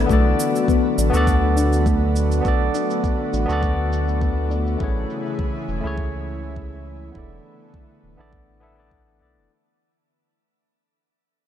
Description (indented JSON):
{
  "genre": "sunset chillout",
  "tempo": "102 BPM",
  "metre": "4/4",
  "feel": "swing 54% on 16ths",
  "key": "B dorian",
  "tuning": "A4 = 440 Hz",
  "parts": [
    { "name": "barky tine electric piano", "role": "accompaniment", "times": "0.0-9.5 s", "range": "A3 to E5", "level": "-24 LUFS", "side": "moving between left 6 dB and right 6 dB", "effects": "auto-pan, low-pass filter, digital delay, shimmer reverb" },
    { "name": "airy breathy pad", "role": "sustained chords", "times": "0.0-9.5 s", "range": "C#3 to G#4", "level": "-27 LUFS", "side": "left 1 dB", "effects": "chorus, shimmer reverb" },
    { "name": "warm sub bass", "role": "bass", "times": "0.0-9.5 s", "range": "D1 to D2", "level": "-22 LUFS", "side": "equal", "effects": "none" },
    { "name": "soft round pluck", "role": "arpeggios", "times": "0.1-4.8 s", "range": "A3 to D4", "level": "-27 LUFS", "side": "left 4 dB", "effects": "lush chorus, digital delay, shimmer reverb" },
    { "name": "electronic kick drum", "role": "drums", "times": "0.1-9.0 s", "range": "none", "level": "-23 LUFS", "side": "equal", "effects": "none" },
    { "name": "shaker", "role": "drums", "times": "0.1-9.5 s", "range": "none", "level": "-34 LUFS", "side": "right 1 dB", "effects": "overdrive, low-pass filter on hats, low-pass filter on perc, low-pass filter on snare, low-pass filter on room" }
  ],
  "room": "moderate concert hall reverb, RT60 2.2 s",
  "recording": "none",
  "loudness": "-18 LUFS",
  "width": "side -10 dB against mid",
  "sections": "0.1-9.5 A section",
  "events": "fade-out 0.1-9.5; filter sweep on tine electric piano 0.1-9.5",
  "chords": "0.1 Bm7; 4.8 Amaj7; 7.2 E7sus4"
}